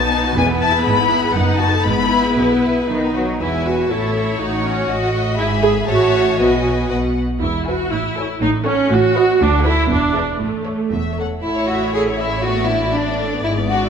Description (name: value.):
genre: quick classical-period movement for string orchestra.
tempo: 120 BPM.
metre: 2/4.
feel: rubato.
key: E major, A major from 9.4 s.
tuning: A4 = 440 Hz.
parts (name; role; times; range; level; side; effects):
rich chamber violin section; melody; 0.0-13.9 s; B4 to B5; -23 LUFS; left 6 dB; none.
rich chamber violin section; second line; 0.0-13.9 s; G#3 to E5; -22 LUFS; left 2 dB; none.
rich chamber viola section; accompaniment; 0.0-13.9 s; G#3 to E5; -19 LUFS; right 2 dB; none.
clear chamber cello section; bass; 0.0-13.9 s; D2 to F#3; -23 LUFS; right 1 dB; none.
rich chamber double bass section; bass; 0.0-13.9 s; E1 to D2; -24 LUFS; right 1 dB; none.
room: wet scoring stage reverb, RT60 1.8 s.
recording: minimal, uncompressed stereo recording.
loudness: -15 LUFS.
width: side -7 dB against mid.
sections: 0.0-3.4 A section; 3.4-11.4 B section; 11.4-13.9 A section.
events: none.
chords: 0.4 E; 0.9 E/G#; 1.4 B7/F#; 1.9 E/G#; 2.4 E/B; 2.9 B; 3.4 E; 3.9 A; 4.4 F#m/A; 4.9 D#dim/A; 5.4 E/G#; 5.9 F#m7/A; 6.4 B5; 7.4 E; 7.9 Amaj7; 8.4 F#m/A; 8.9 B7/A; 9.4 Bm7/D; 9.9 E7; 10.4 A; 12.5 Bm7/A.